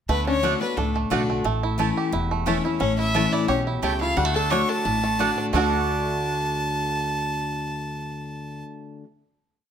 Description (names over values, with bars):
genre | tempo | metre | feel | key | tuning
bluegrass | 176 BPM | 4/4 | swing 53% on 8ths | D major | A4 = 436 Hz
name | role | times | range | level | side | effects
clear fiddle | melody | 0.1-8.6 s | A4 to C#6 | -27 LUFS | equal | none
lap resonator guitar | second line | 0.1-8.6 s | A3 to C#5 | -31 LUFS | left 5 dB | none
picked steel-string acoustic guitar | accompaniment | 0.1-9.1 s | E2 to F#4 | -27 LUFS | left 4 dB | none
bluegrass banjo | arpeggios | 0.1-8.7 s | G3 to A4 | -28 LUFS | right 7 dB | none
upright bass | bass | 0.1-8.6 s | E1 to D2 | -29 LUFS | equal | none
mandolin | stabs | 0.4-9.1 s | A3 to A5 | -29 LUFS | right 9 dB | none
room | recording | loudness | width
moderate studio reverb, RT60 0.8 s | none | -21 LUFS | side -8 dB against mid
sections
0.1-5.5 A section; 5.5-8.3 final chord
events
none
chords
0.1 D; 1.4 A; 4.2 D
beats
| 0.09 0.43 0.77 1.11 | 1.45 1.79 2.13 2.46 | 2.81 3.15 3.48 3.83 | 4.17 4.51 4.85 5.19 | 5.54 5.88 6.22 6.56 | 6.91 7.25 7.59 7.93